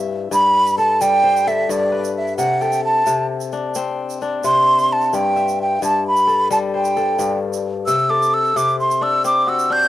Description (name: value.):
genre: west african traditional, West African string and xylophone music.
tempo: 87 BPM (dotted quarters).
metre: 12/8.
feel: straight.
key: G major.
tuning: A4 = 440 Hz.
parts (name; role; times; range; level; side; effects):
kora; arpeggios; 0.0-9.9 s; G2 to E5; -22 LUFS; left 5 dB; cassette tape.
breathy concert flute; melody; 0.3-9.9 s; D5 to G6; -16 LUFS; right 1 dB; cassette tape.
tube shaker; percussion; 0.3-9.9 s; none; -34 LUFS; right 10 dB; none.
room: light reverb.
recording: home recording on cassette.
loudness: -15 LUFS.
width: side -14 dB against mid.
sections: 0.0-9.9 A section.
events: flute solo 0.0-9.9.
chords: 0.0 G; 2.4 D7(no3)/C; 5.1 G5; 7.9 C.